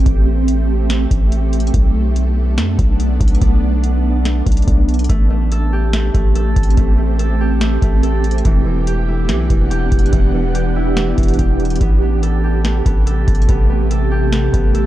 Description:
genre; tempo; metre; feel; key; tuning
hip hop, atmospheric cloud-rap; 143 BPM; 4/4; half-time; A dorian; A4 = 440 Hz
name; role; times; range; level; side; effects
ethereal airy pad; sustained chords; 0.0-14.9 s; C3 to F#5; -21 LUFS; right 2 dB; ensemble chorus, built-in reverb, sidechain pumping
long sustained 808-style bass; bass; 0.0-14.9 s; E1 to F#2; -16 LUFS; equal; none
booming analog drum machine; drums; 0.1-14.8 s; hi-hat, kick drum, snare drum; -15 LUFS; equal; none
concert harp; arpeggios; 5.1-14.9 s; E3 to A4; -23 LUFS; equal; tape echo
room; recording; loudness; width
little or no reverb; dark, warm production; -13 LUFS; side -14 dB against mid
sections
0.0-14.9 A section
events
none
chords
0.0 Am7; 1.7 Bm7; 5.1 Am7; 8.5 Em7; 11.8 Am9

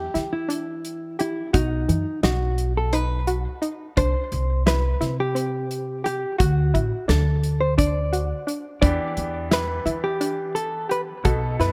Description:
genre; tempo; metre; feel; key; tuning
progressive instrumental, band music in an uneven meter; 173 BPM (eighths); 7/8; straight; E minor; A4 = 440 Hz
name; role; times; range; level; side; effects
hollow-body jazz guitar; melody; 0.0-11.7 s; D#4 to D5; -29 LUFS; equal; tape echo
soft round pluck; arpeggios; 0.0-11.7 s; E3 to G4; -31 LUFS; equal; chorus
upright bass; bass; 0.0-11.7 s; A1 to E3; -27 LUFS; equal; none
natural country drum kit; drums; 0.2-11.7 s; hi-hat, kick drum, snare drum; -27 LUFS; equal; none
bright baby grand piano; accompaniment; 8.8-11.7 s; B2 to A4; -34 LUFS; equal; none
room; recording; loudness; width
light reverb; none; -24 LUFS; mono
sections
0.0-11.7 A section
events
none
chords
0.0 Em7; 1.5 B; 4.0 C; 6.4 D; 8.8 Em7

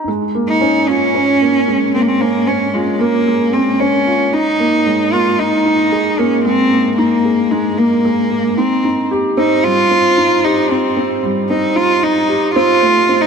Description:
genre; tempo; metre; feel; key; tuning
electronica; 113 BPM; 4/4; straight; unclear; A4 = 443 Hz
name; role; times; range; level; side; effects
felt-muted upright piano; riff; 0.0-13.3 s; G3 to Ab4; -16 LUFS; right 1 dB; tape echo
warm cello; melody; 0.5-13.3 s; Ab3 to F4; -14 LUFS; equal; tape echo
room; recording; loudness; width
moderate huge ambient reverb, RT60 4.2 s; high-pass filter; -12 LUFS; side -6 dB against mid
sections
0.1-13.3 A section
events
drop 0.1-13.3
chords
0.1 Bbm7; 4.3 Ebsus4; 8.6 Cm

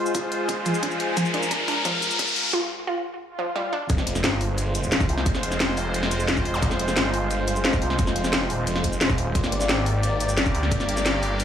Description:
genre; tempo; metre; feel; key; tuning
dark technical drum and bass; 176 BPM; 4/4; straight; F dorian; A4 = 439 Hz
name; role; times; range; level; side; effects
sweeping resonant pad; sustained chords; 0.0-11.4 s; Ab3 to D5; -28 LUFS; equal; chorus, sidechain pumping
riser, swell, sub drop and zap; sound effects; 0.0-6.6 s; none; -27 LUFS; left 1 dB; none
warbly tape-like pad; texture; 0.0-2.5 s; F4 to Ab5; -31 LUFS; left 2 dB; chorus, built-in reverb, phaser, sidechain pumping
wide unison pluck; arpeggios; 0.1-3.8 s; F3 to F4; -29 LUFS; right 1 dB; sidechain pumping, dub echo
drum and bass drum kit; drums; 0.1-11.4 s; hi-hat, shaker, snare drum; -25 LUFS; left 1 dB; high-pass filter on hats, high-pass filter on perc, high-pass filter on snare, high-pass filter on room
electronic kick drum; drums; 0.1-10.8 s; none; -26 LUFS; equal; high-pass filter on kick, high-pass filter on room
snarling distorted saw bass; bass; 3.9-11.4 s; Eb1 to D2; -26 LUFS; equal; distortion, tube saturation, sidechain pumping
room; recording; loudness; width
light reverb; high-pass filter, studio reverb; -21 LUFS; side -9 dB against mid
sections
0.0-3.9 A section; 3.9-11.4 B section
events
build-up 0.0-3.9; riser 0.0-2.5; filter sweep on synth arpeggio sound 0.0-3.9; drum fill 1.2-2.5; break 2.5-3.9; swell 3.4-3.9; drop 3.9-11.4; impact 3.9-5.3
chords
0.0 Fm; 9.4 Gm

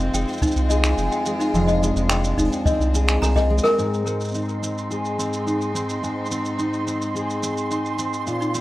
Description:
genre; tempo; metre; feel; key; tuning
folktronica; 107 BPM; 4/4; straight; unclear; A4 = 438 Hz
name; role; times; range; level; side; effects
clear string quartet; sustained chords; 0.0-8.6 s; Ab2 to F4; -32 LUFS; left 1 dB; none
fingerpicked steel-string acoustic guitar; arpeggios; 0.0-8.6 s; F2 to Ab4; -24 LUFS; equal; low-pass filter, tape echo
warm sub bass; bass; 0.0-3.6 s; F1 to C2; -21 LUFS; equal; none
jazz brush drum kit; drums; 0.0-8.6 s; finger snaps, hi-hat, rim click, shaker; -28 LUFS; right 1 dB; none
toy piano; second line; 0.1-3.7, 8.4-8.5 s; Eb4 to Bb5; -24 LUFS; left 1 dB; tape echo
kick drum; drums; 0.4-3.5 s; none; -24 LUFS; equal; none
flickering grainy texture; texture; 4.2-8.6 s; C6; -31 LUFS; right 4 dB; built-in reverb
room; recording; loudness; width
light reverb; rough home demo mix; -20 LUFS; side -16 dB against mid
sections
0.0-3.8 A section; 3.8-8.6 B section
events
drum fill 3.2-3.8; band accent 3.6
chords
0.0 Fm; 3.8 Ab

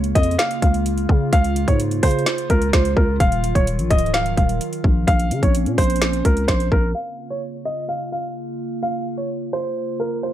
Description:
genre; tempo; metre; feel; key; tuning
hip hop, trap; 128 BPM; 4/4; half-time; Db major; A4 = 440 Hz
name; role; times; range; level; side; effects
warbly tape-like pad; sustained chords; 0.0-10.3 s; Db3 to F4; -27 LUFS; right 1 dB; chorus, built-in reverb
growling 808-style bass; bass; 0.0-6.9 s; Db1 to Db3; -21 LUFS; equal; none
trap drum kit; drums; 0.0-6.8 s; hi-hat, kick drum, snare drum; -18 LUFS; equal; none
dark concert grand piano; melody; 0.2-10.3 s; Bb4 to F5; -23 LUFS; right 1 dB; low-pass filter
room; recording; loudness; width
little or no reverb; low-pass filter; -17 LUFS; side -12 dB against mid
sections
0.0-7.0 A section; 7.0-10.3 B section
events
filter sweep 7.0-10.3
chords
0.0 Db6; 3.2 Ebmadd9; 5.1 Bbmadd9; 7.0 Db6

